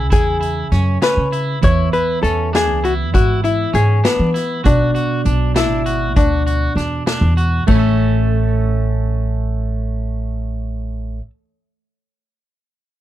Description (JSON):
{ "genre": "progressive instrumental, band music in an uneven meter", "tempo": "198 BPM (eighths)", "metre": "5/8", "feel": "straight", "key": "A major", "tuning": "A4 = 440 Hz", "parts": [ { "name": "hollow-body jazz guitar", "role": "melody", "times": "0.0-11.2 s", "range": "A3 to C#5", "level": "-19 LUFS", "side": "left 4 dB", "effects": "none" }, { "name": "bell-like tine electric piano", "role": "accompaniment", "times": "0.0-11.2 s", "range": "B2 to E5", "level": "-25 LUFS", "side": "moving between right 6 dB and right 13 dB", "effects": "auto-pan" }, { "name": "electric guitar at the edge of break-up", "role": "arpeggios", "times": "0.0-11.3 s", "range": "A3 to A4", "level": "-26 LUFS", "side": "right 2 dB", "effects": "none" }, { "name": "upright bass", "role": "bass", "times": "0.0-11.2 s", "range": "G#1 to E3", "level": "-18 LUFS", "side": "equal", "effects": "none" }, { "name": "street-band drum kit", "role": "drums", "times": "0.1-7.8 s", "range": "crash cymbal, hi-hat, kick drum, snare drum", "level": "-18 LUFS", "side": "equal", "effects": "none" } ], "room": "small room ambience", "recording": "dry, close 1970s-style studio recording", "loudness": "-14 LUFS", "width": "side -13 dB against mid", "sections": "0.0-7.7 A section; 7.7-10.7 B section", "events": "none", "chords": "0.0 C#m; 1.6 E; 4.7 Bm; 7.7 A" }